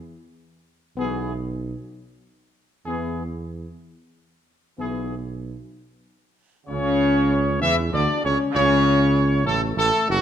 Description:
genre	classical, ceremonial fanfare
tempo	64 BPM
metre	4/4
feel	straight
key	A major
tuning	A4 = 444 Hz
part	mellow trumpet section	melody	1.0-10.2 s	F#4 to E5	-23 LUFS	equal	none
part	bright trombone section	sustained chords	1.0-10.2 s	F#2 to E3	-31 LUFS	right 3 dB	none
part	mellow French horn section	sustained chords	1.0-10.2 s	F#3 to E4	-24 LUFS	left 4 dB	none
part	dark tuba	bass	1.0-10.2 s	F#1 to E2	-25 LUFS	right 4 dB	none
room	wet recital hall reverb, RT60 1.4 s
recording	none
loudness	-19 LUFS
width	side -9 dB against mid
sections	0.0-6.7 A section; 6.7-10.2 B section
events	none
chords	0.0 E5; 6.7 A/C#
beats	0.05 0.96 1.90 | 2.85 3.82 4.77 5.72 | 6.69 7.62 8.54 9.46

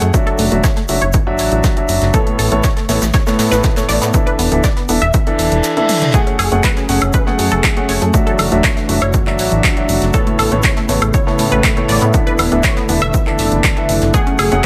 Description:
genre	progressive house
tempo	120 BPM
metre	4/4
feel	straight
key	unclear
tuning	A4 = 440 Hz
part	unison pluck	arpeggios	0.0-14.7 s	A3 to E5	-23 LUFS	equal	phaser, sidechain pumping, tape echo
part	dark grand piano	stabs	0.0-14.6 s	A2 to F#5	-20 LUFS	equal	sidechain pumping, tape echo
part	plucky analog bass	bass	0.0-14.6 s	D1 to A2	-20 LUFS	equal	sidechain pumping
part	deep house drum kit	drums	0.0-14.7 s	handclaps, hi-hat, toms, woodblock	-22 LUFS	equal	small room reverb
part	tight funk drum kit	drums	0.0-14.7 s	hi-hat, shaker, snare drum	-29 LUFS	equal	sidechain pumping on hats, high-pass filter on hats, small room reverb, high-pass filter on snare, sidechain pumping on perc, high-pass filter on perc, high-pass filter on room
part	electronic kick drum	drums	0.1-14.2 s	none	-18 LUFS	equal	small room reverb
part	reverse cymbal	sound effects	5.3-6.1 s	none	-27 LUFS	equal	none
part	warm analog pad	sustained chords	6.1-14.7 s	C#3 to G#4	-24 LUFS	equal	chorus, sidechain pumping
room	light reverb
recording	none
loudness	-14 LUFS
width	mono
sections	0.0-14.7 A section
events	reverse cymbal 5.3-6.1; drum fill 5.8-6.1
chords	0.1 Dadd9; 2.1 Aadd9; 4.1 E7sus4; 6.1 F#madd9; 8.1 Dadd9; 10.1 Aadd9; 12.1 E7sus4; 14.1 F#madd9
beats	| 0.14 0.64 1.14 1.64 | 2.14 2.64 3.14 3.64 | 4.14 4.64 5.14 5.64 | 6.14 6.64 7.14 7.64 | 8.14 8.64 9.14 9.64 | 10.14 10.64 11.14 11.64 | 12.14 12.64 13.14 13.64 | 14.14 14.64

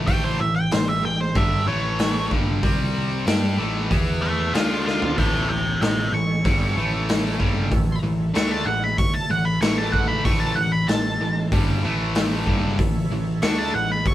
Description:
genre	blues rock power trio and southern rock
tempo	94 BPM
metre	4/4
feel	straight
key	A mixolydian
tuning	A4 = 441 Hz
part	distorted electric guitar	riff	0.0-14.0 s	G2 to G4	-26 LUFS	equal	overdrive
part	picked electric bass	bass	0.0-14.0 s	G1 to G2	-26 LUFS	equal	none
part	octave-fuzz lead guitar	melody	0.1-14.1 s	C5 to C#6	-24 LUFS	right 1 dB	distortion
part	raw garage drum kit	drums	0.1-14.1 s	hi-hat, kick drum, snare drum, toms	-23 LUFS	equal	none
part	overdriven tonewheel organ	sustained chords	5.2-14.1 s	A3 to C#5	-37 LUFS	right 2 dB	slow rotary speaker, chorus vibrato
room	moderate studio ambience, RT60 0.5 s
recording	band playing live in one room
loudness	-19 LUFS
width	side -13 dB against mid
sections	0.0-14.1 A section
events	lead electric guitar solo 0.0-14.1; drum fill 4.9-5.2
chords	0.0 A; 2.6 C5; 3.3 A5; 3.9 E5; 4.5 D5; 5.2 A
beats	| 0.08 0.72 1.36 2.00 | 2.64 3.27 3.91 4.55 | 5.18 5.82 6.46 7.09 | 7.73 8.36 8.99 9.63 | 10.26 10.89 11.53 12.16 | 12.79 13.42 14.05

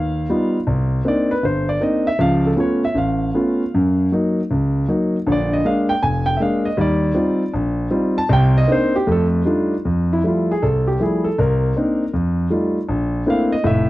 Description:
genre	solo jazz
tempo	158 BPM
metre	4/4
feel	swing 66% on 8ths, rubato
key	Bb major, F major from 9.9 s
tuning	A4 = 439 Hz
part	warm concert grand piano	solo	0.0-13.9 s	F1 to A5	-16 LUFS	equal	none
room	small room ambience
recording	dry, close 1970s-style studio recording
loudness	-16 LUFS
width	side -17 dB against mid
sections	0.0-9.9 A section; 9.9-13.9 A section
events	grand piano solo 0.0-9.9, 9.9-13.9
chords	0.0 Gaug7; 0.7 Cm9; 2.2 Dbaug7; 3.7 Gb6; 5.3 Bb7; 6.8 Eb69; 8.3 Cm9; 9.1 F13; 9.9 Fmaj9; 11.4 Cm9; 12.1 F9; 12.9 Bbmaj9#11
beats	0.30 | 0.68 1.05 1.43 1.81 | 2.19 2.57 2.95 3.34 | 3.74 4.12 4.51 4.89 | 5.28 5.66 6.04 6.41 | 6.79 7.17 7.54 7.92 | 8.30 8.68 9.07 9.46 | 9.86 10.24 10.63 11.01 | 11.39 11.77 12.14 12.51 | 12.89 13.27 13.64

